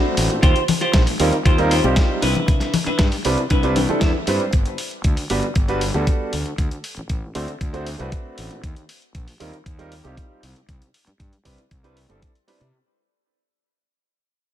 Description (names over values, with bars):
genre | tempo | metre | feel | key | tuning
nu-disco, nu disco | 117 BPM | 4/4 | straight | unclear | A4 = 440 Hz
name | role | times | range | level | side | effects
bright grand piano | accompaniment | 0.0-12.6 s | G3 to B5 | -24 LUFS | right 2 dB | sidechain pumping, ping-pong delay
clean electric guitar | riff | 0.0-4.5 s | D4 to G5 | -23 LUFS | equal | lush chorus, ping-pong delay
fuzz fingered electric bass | bass | 0.2-12.7 s | G1 to C3 | -24 LUFS | equal | overdrive, sidechain pumping
dusty soul sampler-style drum kit | drums | 0.2-12.7 s | hi-hat, snare drum | -26 LUFS | equal | none
electronic kick drum | drums | 0.4-12.3 s | none | -18 LUFS | equal | none
congas | percussion | 0.4-3.9 s | none | -25 LUFS | left 5 dB | none
room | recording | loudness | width
light reverb | none | -17 LUFS | side -11 dB against mid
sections
0.0-12.7 A section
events
fade-out 0.0-12.7; clean electric guitar fill 3.5-4.5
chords
0.4 Eb69; 2.2 Cmaj9; 4.5 Gmaj7; 6.3 D7; 8.6 Eb69; 10.4 Cmaj9